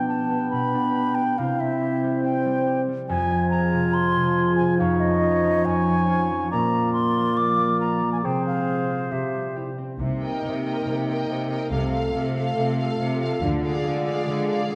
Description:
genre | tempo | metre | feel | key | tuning
cinematic | 140 BPM | 4/4 | straight | F minor, C minor from 10.0 s | A4 = 442 Hz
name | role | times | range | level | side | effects
bright baroque flute | second line | 0.0-9.6 s | Eb5 to D6 | -28 LUFS | equal | none
mellow clarinet | second line | 0.0-9.8 s | D4 to Ab4 | -32 LUFS | equal | none
warm oboe | second line | 0.0-9.8 s | C5 to Ab5 | -33 LUFS | equal | none
mellow French horn section | sustained chords | 0.0-14.8 s | F3 to F4 | -28 LUFS | equal | none
concert harp | arpeggios | 0.0-14.8 s | F2 to F5 | -31 LUFS | equal | none
rich symphonic cello section | bass | 10.0-14.8 s | C3 to D3 | -30 LUFS | equal | none
rich symphonic double bass section | bass | 10.0-13.8 s | C2 to D2 | -33 LUFS | equal | none
warm symphonic violin section | melody | 10.2-14.8 s | F5 to G5 | -35 LUFS | equal | none
warm symphonic violin section | second line | 10.2-14.8 s | D5 to F5 | -38 LUFS | equal | none
warm studio viola section | accompaniment | 10.2-14.8 s | Ab4 to Bb4 | -33 LUFS | equal | none
room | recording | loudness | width
wet scoring stage reverb, RT60 1.8 s | none | -23 LUFS | mono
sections
0.0-10.0 A section; 10.0-14.8 B section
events
none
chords
0.0 G/B; 1.4 C; 3.1 Fm; 4.8 Dbadd9/F; 6.5 Bb; 8.2 Fm/C; 9.1 C; 10.0 Cm7; 11.7 F/C; 13.4 Ddim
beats
0.10 0.53 0.96 | 1.39 1.81 2.24 2.67 | 3.10 3.52 3.95 4.38 | 4.80 5.24 5.67 6.10 | 6.53 6.96 7.39 7.82 | 8.25 8.68 9.12 9.56 | 10.00 10.44 10.87 11.30 | 11.72 12.15 12.58 13.01 | 13.44 13.86 14.29 14.72

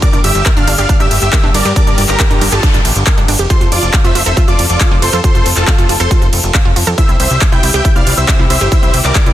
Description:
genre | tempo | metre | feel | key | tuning
uplifting trance | 138 BPM | 4/4 | straight | F major | A4 = 440 Hz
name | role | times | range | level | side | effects
dense compressed supersaw | melody | 0.0-9.3 s | F4 to G5 | -19 LUFS | equal | vintage 12-bit sampler grit, sidechain pumping, digital delay
plucky unison lead | second line | 0.0-9.3 s | A5 to G6 | -21 LUFS | equal | ensemble chorus, sidechain pumping, digital delay
dark studio string section | sustained chords | 0.0-9.3 s | C3 to A4 | -22 LUFS | left 3 dB | vintage 12-bit sampler grit, sidechain pumping
wide unison pluck | arpeggios | 0.0-9.3 s | D4 to F5 | -21 LUFS | right 4 dB | sidechain pumping, digital delay
big-room dance drum kit | drums | 0.0-9.3 s | handclaps, hi-hat, ride cymbal | -17 LUFS | equal | none
electronic kick drum | drums | 0.0-9.2 s | none | -11 LUFS | equal | none
plucky analog bass | bass | 0.1-9.3 s | F1 to G2 | -16 LUFS | equal | sidechain pumping
noise sweep | sound effects | 2.2-3.5 s | none | -23 LUFS | right 2 dB | none
room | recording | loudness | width
little or no reverb | dense, heavily limited modern master | -9 LUFS | side -13 dB against mid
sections
0.0-9.3 A section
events
noise sweep 2.2-3.5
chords
0.0 Gmadd9; 3.5 F; 7.0 C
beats
| 0.02 0.46 0.89 1.33 | 1.76 2.20 2.63 3.07 | 3.50 3.94 4.37 4.81 | 5.24 5.67 6.11 6.54 | 6.98 7.41 7.85 8.28 | 8.72 9.15

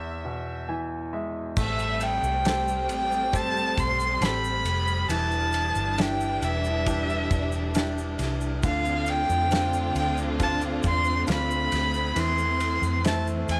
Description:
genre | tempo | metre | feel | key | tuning
pop ballad | 68 BPM | 4/4 | straight | A minor | A4 = 438 Hz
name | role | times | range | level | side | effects
rich violin | melody | 0.0-13.6 s | E5 to C6 | -29 LUFS | equal | none
clear concert grand piano | accompaniment | 0.0-13.6 s | E2 to G#5 | -34 LUFS | equal | none
warm studio string section | sustained chords | 1.6-13.6 s | D3 to F4 | -35 LUFS | equal | none
vintage muted fingered electric bass | bass | 1.6-13.6 s | E1 to F2 | -32 LUFS | equal | none
loose indie drum kit | drums | 1.6-13.6 s | crash cymbal, kick drum, ride cymbal, snare drum | -34 LUFS | equal | none
tube shaker | percussion | 1.6-13.6 s | none | -47 LUFS | equal | none
room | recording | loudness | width
small room ambience | none | -26 LUFS | mono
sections
0.0-1.6 A section; 1.6-13.6 B section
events
grand piano fill 0.2-1.6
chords
0.0 E; 1.6 Am7; 5.1 Em7; 8.6 Dm7; 12.2 Am/E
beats
0.69 | 1.57 2.46 3.34 4.22 | 5.10 5.98 6.87 7.75 | 8.63 9.51 10.40 11.28 | 12.16 13.04

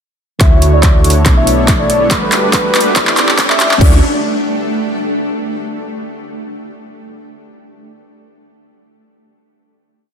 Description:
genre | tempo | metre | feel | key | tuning
future bass | 141 BPM | 4/4 | swing 54% on 16ths, half-time | D major | A4 = 440 Hz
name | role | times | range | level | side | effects
warm velvety synth lead | melody | 0.4-4.0 s | B4 to E5 | -18 LUFS | left 1 dB | chorus, sidechain pumping, ping-pong delay
overdriven tine electric piano | accompaniment | 0.4-4.0 s | B2 to F#5 | -20 LUFS | right 3 dB | medium tremolo, sidechain pumping
shimmering ambient pad | sustained chords | 1.2-4.0 s | A3 to D4 | -21 LUFS | equal | chorus, built-in reverb, sidechain pumping
big bright polysynth | riff | 0.4-4.0 s | A3 to D5 | -18 LUFS | equal | chorus, sidechain pumping
warm 808-style bass | bass | 0.4-4.0 s | G1 to D2 | -14 LUFS | equal | sidechain pumping
big-room dance drum kit | drums | 0.4-3.9 s | crash cymbal, handclaps, hi-hat | -15 LUFS | equal | overdrive
electronic kick drum | drums | 0.4-3.9 s | none | -12 LUFS | equal | overdrive
riser | sound effects | 2.0-3.8 s | none | -24 LUFS | equal | none
room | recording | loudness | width
light reverb | dense, heavily limited modern master, high-pass filter | -9 LUFS | side -7 dB against mid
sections
0.4-3.8 build; 3.8-5.5 final chord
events
build-up 0.4-3.8; drum fill 0.4-3.8; filter sweep on analog polysynth 0.4-3.8; filter sweep 0.4-3.8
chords
0.4 Dmaj9; 1.3 Bm11; 2.1 Gmaj9; 3.0 A7sus4; 3.8 Dmaj9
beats
| 0.41 0.83 1.26 1.68 | 2.11 2.54 2.96 3.39 | 3.81

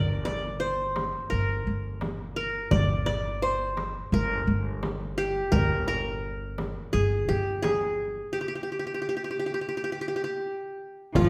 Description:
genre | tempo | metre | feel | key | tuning
Turkish makam ensemble | 85 BPM | 4/4 | straight | G makam kurdi | A4 = 440 Hz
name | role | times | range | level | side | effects
qanun | melody | 0.0-11.3 s | F4 to D5 | -31 LUFS | equal | none
upright bass | bass | 0.0-11.3 s | G1 | -32 LUFS | equal | none
darbuka | percussion | 0.1-11.3 s | none | -35 LUFS | equal | none
frame drum | percussion | 0.3-11.3 s | none | -35 LUFS | equal | none
warm cello | second line | 11.2-11.3 s | F3 | -28 LUFS | equal | none
riq | percussion | 11.2-11.3 s | none | -39 LUFS | equal | none
room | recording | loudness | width
wet recital hall reverb, RT60 1.5 s | recorded in a church or concert hall | -29 LUFS | mono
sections
0.0-11.2 A section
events
break 8.3-11.2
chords
none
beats
0.61 1.31 2.02 | 2.72 3.42 4.13 4.83 | 5.53 6.24 6.94 7.64 | 8.35 9.05 9.75 10.45 | 11.15

